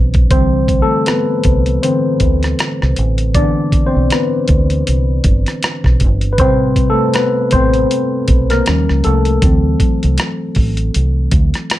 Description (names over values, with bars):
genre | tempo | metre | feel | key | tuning
R&B, neo-soul | 79 BPM | 4/4 | swing 58% on 16ths | unclear | A4 = 439 Hz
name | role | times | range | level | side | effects
mellow tine electric piano | accompaniment | 0.0-11.8 s | C3 to D5 | -15 LUFS | left 1 dB | overdrive, wide subtle chorus, plate reverb
deep dub fingered electric bass | bass | 0.0-11.5 s | G1 to D#2 | -15 LUFS | equal | none
boom bap sampler-style drum kit | drums | 0.1-11.8 s | hi-hat, kick drum, rim click | -15 LUFS | equal | none
room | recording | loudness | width
light reverb | none | -12 LUFS | side -14 dB against mid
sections
0.0-11.8 A section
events
tine electric piano solo 0.0-11.8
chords
0.3 Cmaj7; 6.4 Am9; 8.7 D#9; 9.4 D7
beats
| 0.31 1.07 1.83 2.59 | 3.35 4.11 4.87 5.63 | 6.39 7.14 7.91 8.66 | 9.42 10.18 10.94 11.70